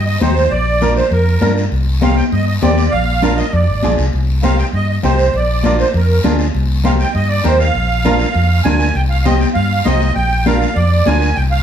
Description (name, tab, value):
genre	latin, cumbia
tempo	199 BPM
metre	4/4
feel	straight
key	unclear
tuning	A4 = 442 Hz
part	musette accordion	melody	0.0-11.6 s	Bb4 to Ab5	-18 LUFS	right 3 dB	none
part	fingered electric bass	bass	0.0-11.6 s	Ab1 to G2	-15 LUFS	equal	none
part	flamenco guitar	accompaniment	0.2-11.3 s	D4 to C5	-20 LUFS	right 3 dB	none
part	congas	percussion	0.2-11.5 s	none	-20 LUFS	left 4 dB	none
part	guiro	percussion	0.2-11.6 s	none	-29 LUFS	left 4 dB	none
room	wet studio reverb, RT60 0.8 s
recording	heard from further back in the room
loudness	-12 LUFS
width	side -9 dB against mid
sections	0.0-11.6 A section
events	none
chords	0.0 Cm; 0.5 Bb; 1.7 Cmadd9; 2.9 Bb; 4.1 Cm; 5.3 Bb; 6.5 Cm; 7.8 Bb; 9.0 Cm; 10.2 Bb